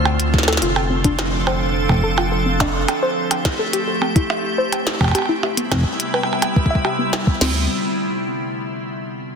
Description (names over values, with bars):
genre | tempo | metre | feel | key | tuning
IDM | 106 BPM | 4/4 | straight | D dorian | A4 = 441 Hz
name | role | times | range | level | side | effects
icy glass pad | sustained chords | 0.0-7.7 s | C3 to A4 | -22 LUFS | equal | chorus, built-in reverb
warbly dusty pluck | arpeggios | 0.0-7.7 s | B3 to E5 | -24 LUFS | left 2 dB | chorus, tape echo
rubbery square bass | bass | 0.0-2.9, 7.4-7.7 s | F1 to D2 | -22 LUFS | equal | none
glitchy drum kit | drums | 0.1-7.2 s | hi-hat, percussion blips, snare drum | -22 LUFS | right 2 dB | none
glitchy drum kit | drums | 0.3-7.5 s | crash cymbal, kick drum, snare drum | -18 LUFS | equal | none
room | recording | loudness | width
moderate lush hall reverb, RT60 1.9 s | dense, heavily limited modern master | -17 LUFS | side -6 dB against mid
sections
0.0-7.4 A section; 7.4-9.4 B section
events
filter sweep on synth arpeggio sound 0.0-7.4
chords
0.0 Dm7; 0.6 F6; 2.9 Am7; 5.1 Cmaj7; 7.4 Dm7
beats
0.05 | 0.62 1.19 1.75 2.32 | 2.88 3.45 4.02 4.58 | 5.15 5.71 6.28 6.85 | 7.41